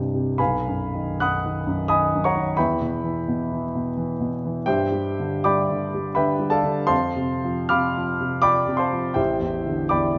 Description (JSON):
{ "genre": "classical, impressionist solo piano", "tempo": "68-89 BPM", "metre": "3/4", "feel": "rubato", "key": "G mixolydian", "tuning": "A4 = 440 Hz", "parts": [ { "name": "warm grand piano", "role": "solo", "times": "0.0-10.2 s", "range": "A1 to F#6", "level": "-23 LUFS", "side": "equal", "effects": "none" } ], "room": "moderate recital hall reverb, RT60 1.4 s", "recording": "nothing above 7.5 kHz", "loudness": "-23 LUFS", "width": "mono", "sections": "0.0-10.2 A section", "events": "none", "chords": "0.4 Bmaj7; 2.6 Em; 4.7 Gadd9; 6.9 F; 9.2 Am11" }